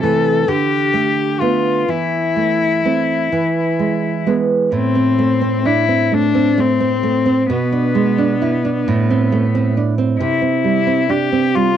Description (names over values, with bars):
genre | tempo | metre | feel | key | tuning
romantic duo for cello and classical guitar | 43 BPM (dotted quarters) | 6/8 | uneven beats, rubato | A minor | A4 = 440 Hz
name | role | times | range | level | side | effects
clear cello | melody | 0.0-11.8 s | B3 to A4 | -17 LUFS | left 6 dB | cassette tape
nylon-string guitar | accompaniment | 0.0-11.8 s | A2 to E4 | -16 LUFS | right 5 dB | none
room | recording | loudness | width
moderate small room ambience, RT60 0.5 s | home recording on cassette | -14 LUFS | side -9 dB against mid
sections
0.0-4.7 A section; 4.7-11.8 B section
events
none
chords
0.5 Dmadd11; 1.9 Am/E; 3.3 E; 4.7 Am; 7.5 G#dim/B; 8.9 Am; 10.2 C